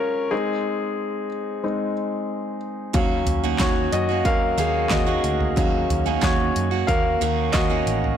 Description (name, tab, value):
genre	piano-driven pop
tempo	91 BPM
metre	4/4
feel	straight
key	unclear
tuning	A4 = 438 Hz
part	warm concert grand piano	accompaniment	0.0-8.2 s	Gb3 to F5	-23 LUFS	left 4 dB	none
part	picked steel-string acoustic guitar	riff	2.9-8.2 s	Eb3 to Gb4	-26 LUFS	right 14 dB	none
part	vintage muted picked electric bass	bass	2.9-8.1 s	A1 to Gb2	-26 LUFS	equal	none
part	pop drum kit	drums	2.9-8.2 s	handclaps, hi-hat, kick drum, snare drum, toms	-24 LUFS	right 1 dB	none
part	group handclap	percussion	3.6-7.7 s	none	-35 LUFS	right 11 dB	none
room	light reverb, small room reverb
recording	blown-out, overdriven recording, overdrive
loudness	-20 LUFS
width	side -9 dB against mid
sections	0.0-8.2 A section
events	grand piano solo 0.0-8.2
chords	0.3 Ab; 2.9 Ebm7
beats	| 0.32 0.98 1.63 2.29 | 2.95 3.60 4.26 4.92 | 5.57 6.23 6.88 7.54